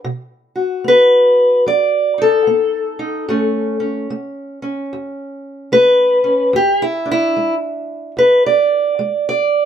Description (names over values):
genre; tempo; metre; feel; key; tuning
acoustic country blues, solo or duo; 74 BPM; 4/4; swing 63% on 8ths; E mixolydian; A4 = 440 Hz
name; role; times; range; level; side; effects
fingerpicked steel-string acoustic guitar; solo; 0.0-9.7 s; E2 to D5; -13 LUFS; equal; none
room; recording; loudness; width
light reverb; minimal, uncompressed stereo recording; -12 LUFS; side -9 dB against mid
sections
0.0-9.7 A section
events
steel-string acoustic guitar solo 0.0-9.7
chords
0.0 B7; 3.3 A; 6.5 E7